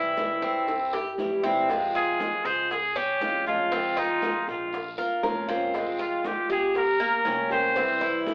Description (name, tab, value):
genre	latin, Cuban son and guajira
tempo	118 BPM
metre	4/4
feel	straight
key	F minor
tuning	A4 = 440 Hz
part	trumpet with straight mute	melody	0.0-8.2 s	Eb4 to C5	-29 LUFS	equal	none
part	picked steel-string acoustic guitar	accompaniment	0.0-8.3 s	C3 to G4	-32 LUFS	equal	none
part	Cuban tres	arpeggios	0.0-8.3 s	Bb3 to Bb4	-32 LUFS	equal	none
part	upright bass	bass	0.0-8.3 s	F1 to G2	-51 LUFS	equal	none
part	bongos	percussion	0.2-8.3 s	none	-40 LUFS	equal	none
part	congas	percussion	0.2-8.3 s	none	-44 LUFS	equal	none
part	guiro	percussion	0.2-8.3 s	none	-50 LUFS	equal	none
part	maracas	percussion	0.2-8.3 s	none	-61 LUFS	equal	none
part	nylon-string guitar	second line	5.0-8.3 s	E4 to Bb4	-32 LUFS	equal	none
room	wet studio reverb, RT60 0.7 s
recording	heard from further back in the room, telephone sound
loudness	-26 LUFS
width	mono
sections	0.0-1.7 A section; 1.7-8.3 A section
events	drum fill 0.7-1.7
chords	0.0 C; 1.7 Fm; 2.7 Db; 3.7 Fm; 4.7 Bbm; 5.7 Fm; 6.8 Gdim; 7.8 C